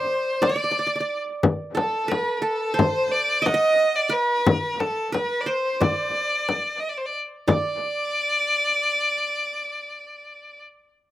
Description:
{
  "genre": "Turkish makam ensemble",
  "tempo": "179 BPM (eighths)",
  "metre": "9/8",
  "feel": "straight",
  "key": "D makam hicaz",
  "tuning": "A4 = 440 Hz",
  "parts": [
    { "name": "clear violin", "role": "melody", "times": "0.0-10.6 s", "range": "A4 to Eb5", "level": "-23 LUFS", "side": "left 1 dB", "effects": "none" },
    { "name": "qanun", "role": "second line", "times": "0.0-10.6 s", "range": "A4 to F#5", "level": "-26 LUFS", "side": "right 3 dB", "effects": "none" },
    { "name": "frame drum", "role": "percussion", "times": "0.4-7.8 s", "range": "none", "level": "-22 LUFS", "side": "left 3 dB", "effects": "none" }
  ],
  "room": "little or no reverb",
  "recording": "recorded outdoors, with no room sound",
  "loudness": "-21 LUFS",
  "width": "side -14 dB against mid",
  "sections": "0.0-7.5 A section; 7.5-10.5 B section",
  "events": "none",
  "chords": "none"
}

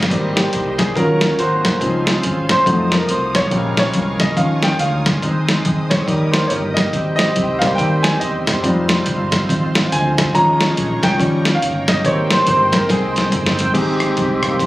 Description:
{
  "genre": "uptempo gospel",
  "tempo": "141 BPM",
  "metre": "4/4",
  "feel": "swing 61% on 8ths",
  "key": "Ab major",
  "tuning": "A4 = 440 Hz",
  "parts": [
    { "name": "bright tonewheel organ", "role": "sustained chords", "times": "0.0-14.7 s", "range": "F3 to G5", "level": "-24 LUFS", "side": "right 2 dB", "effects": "fast rotary speaker, overdrive, chorus vibrato" },
    { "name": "fingered electric bass", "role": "bass", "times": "0.0-14.7 s", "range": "Fb1 to Eb2", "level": "-20 LUFS", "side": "equal", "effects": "none" },
    { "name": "dusty soul sampler-style drum kit", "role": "drums", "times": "0.0-14.7 s", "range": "crash cymbal, hi-hat, kick drum, rim click, snare drum, toms", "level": "-19 LUFS", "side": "equal", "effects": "none" },
    { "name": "clear concert grand piano", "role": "accompaniment", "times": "0.1-14.4 s", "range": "Ab2 to Bb5", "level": "-18 LUFS", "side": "left 1 dB", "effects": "none" },
    { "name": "warm studio string section", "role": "sustained chords", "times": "0.1-14.7 s", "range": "Eb5 to Eb6", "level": "-29 LUFS", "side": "right 2 dB", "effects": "none" }
  ],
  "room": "light reverb",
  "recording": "recorded on a phone in the room, club reverb",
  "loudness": "-14 LUFS",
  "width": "side -17 dB against mid",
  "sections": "0.1-13.7 A section",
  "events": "grand piano solo 0.1-13.7; drum fill 12.9-13.7",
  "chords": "0.1 Abmaj7; 1.0 Ebm7; 1.4 Ab9; 1.8 Dbmaj7; 2.7 F7b9; 3.5 Bbm7; 4.4 Eb9sus4; 5.2 Ab/Eb; 6.1 Eb; 6.9 Abmaj7; 8.6 Fm7; 10.3 Eb7sus4; 11.2 Eb7; 12.0 Abmaj7"
}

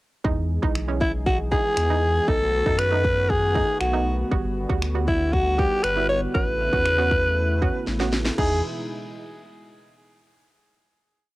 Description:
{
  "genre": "dance-pop",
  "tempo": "118 BPM",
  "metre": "4/4",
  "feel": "straight",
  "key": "E major",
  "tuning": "A4 = 440 Hz",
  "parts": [
    { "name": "hollow square pluck", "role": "accompaniment", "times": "0.2-8.6 s", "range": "E3 to G#4", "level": "-30 LUFS", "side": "right 6 dB", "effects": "chorus, sidechain pumping, cassette tape" },
    { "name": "warm analog pad", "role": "sustained chords", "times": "0.2-8.6 s", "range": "B2 to G#4", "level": "-32 LUFS", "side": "equal", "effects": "chorus, sidechain pumping, cassette tape" },
    { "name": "warm sub bass", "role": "bass", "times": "0.2-8.6 s", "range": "G1 to F#2", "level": "-26 LUFS", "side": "equal", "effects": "sidechain pumping" },
    { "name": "house drum kit", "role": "drums", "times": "0.2-8.5 s", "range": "crash cymbal, finger snaps, kick drum, snare drum", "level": "-26 LUFS", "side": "equal", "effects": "cassette tape" },
    { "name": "raspy alto saxophone", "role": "melody", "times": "1.0-8.6 s", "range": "E4 to C#5", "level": "-23 LUFS", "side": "equal", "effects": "tape echo" }
  ],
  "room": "light reverb",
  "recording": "home recording on cassette",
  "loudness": "-20 LUFS",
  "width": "side -18 dB against mid",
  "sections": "0.2-8.4 verse; 8.4-10.4 final chord",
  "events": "drum fill 7.9-8.4",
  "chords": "0.2 Emaj7; 2.3 B7; 4.3 Gmaj7; 6.3 A69; 8.4 Emaj7"
}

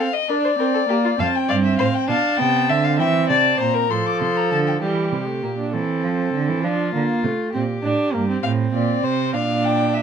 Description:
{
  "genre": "classical, baroque-style fugue for string quartet",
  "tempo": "66 BPM (dotted quarters)",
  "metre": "6/8",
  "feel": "straight",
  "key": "unclear",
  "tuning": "A4 = 440 Hz",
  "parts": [
    { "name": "dark violin", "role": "melody", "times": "0.0-4.7, 8.4-10.0 s", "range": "C5 to D6", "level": "-23 LUFS", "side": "left 7 dB", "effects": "none" },
    { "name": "dark violin", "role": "second line", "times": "0.0-8.4 s", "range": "F4 to G5", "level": "-23 LUFS", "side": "left 4 dB", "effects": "none" },
    { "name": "warm viola", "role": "accompaniment", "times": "0.0-10.0 s", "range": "F3 to D4+23c", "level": "-22 LUFS", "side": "right 3 dB", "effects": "none" },
    { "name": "dark cello", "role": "bass", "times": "1.2-10.0 s", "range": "F2 to F3", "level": "-23 LUFS", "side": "right 5 dB", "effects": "none" }
  ],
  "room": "moderate studio reverb, RT60 0.6 s",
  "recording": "none",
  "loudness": "-18 LUFS",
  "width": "side -7 dB against mid",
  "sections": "0.0-4.8 A section; 4.8-10.0 B section",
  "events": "none",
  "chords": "0.3 Bb; 1.2 F5; 2.1 G7; 3.0 C7; 3.9 F/A; 4.8 Edim; 5.7 Am/E; 6.6 Dm; 7.5 Gm; 8.4 F/A (rootless); 9.3 Bb"
}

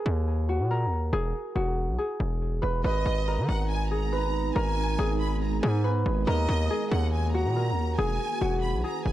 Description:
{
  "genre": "hip hop",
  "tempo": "140 BPM",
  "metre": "4/4",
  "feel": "half-time",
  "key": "G# minor",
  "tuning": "A4 = 444 Hz",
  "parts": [
    { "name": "concert harp", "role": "melody", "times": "0.0-9.1 s", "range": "F#4 to B4", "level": "-30 LUFS", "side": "equal", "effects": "low-pass filter, tape echo" },
    { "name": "distorted 808-style bass", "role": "bass", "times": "0.1-9.1 s", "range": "E1 to D#3", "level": "-26 LUFS", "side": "equal", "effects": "distortion, tube saturation" },
    { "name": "warm studio violin section", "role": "second line", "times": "2.8-9.1 s", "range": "D#5 to B5", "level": "-35 LUFS", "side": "right 1 dB", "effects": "tape echo" },
    { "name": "ethereal airy pad", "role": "sustained chords", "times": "3.4-9.1 s", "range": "D#3 to B4", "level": "-35 LUFS", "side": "right 3 dB", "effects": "ensemble chorus, built-in reverb" }
  ],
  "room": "studio ambience",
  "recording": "dry, gritty hardware recording",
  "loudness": "-24 LUFS",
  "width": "side -13 dB against mid",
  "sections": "0.0-2.8 A section; 2.8-9.1 B section",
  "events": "none",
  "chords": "0.0 D#5; 1.1 E; 2.8 G#m; 6.3 D#m7; 8.0 E"
}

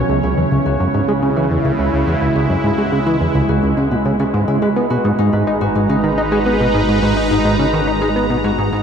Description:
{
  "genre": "ambient, sequencer-driven space music",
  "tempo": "106 BPM",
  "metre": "4/4",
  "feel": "straight",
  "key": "unclear",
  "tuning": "A4 = 440 Hz",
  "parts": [
    { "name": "sweeping resonant pad", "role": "sustained chords", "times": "0.0-8.8 s", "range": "C#3 to A#5", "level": "-18 LUFS", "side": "right 2 dB", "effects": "chorus" },
    { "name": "Celtic harp", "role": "arpeggios", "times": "0.0-8.8 s", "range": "D#4 to B4", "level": "-24 LUFS", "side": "left 4 dB", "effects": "auto-pan, tape echo" },
    { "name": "plucky analog bass", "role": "riff", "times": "0.0-8.8 s", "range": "C#2 to D#4", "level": "-17 LUFS", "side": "equal", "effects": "tape echo" },
    { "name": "analog drone", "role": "bass", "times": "1.0-8.8 s", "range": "G#1 to C#2", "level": "-28 LUFS", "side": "equal", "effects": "chorus" }
  ],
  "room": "moderate huge ambient reverb, RT60 9.5 s",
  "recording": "dark, warm production",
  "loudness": "-14 LUFS",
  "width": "side -7 dB against mid",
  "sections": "0.0-8.8 A section",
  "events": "fade-in on harp 0.0-8.8; fade-in on synth drone 0.0-8.8; fade-out 7.6-8.8",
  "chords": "0.1 C#m; 4.6 G#madd9"
}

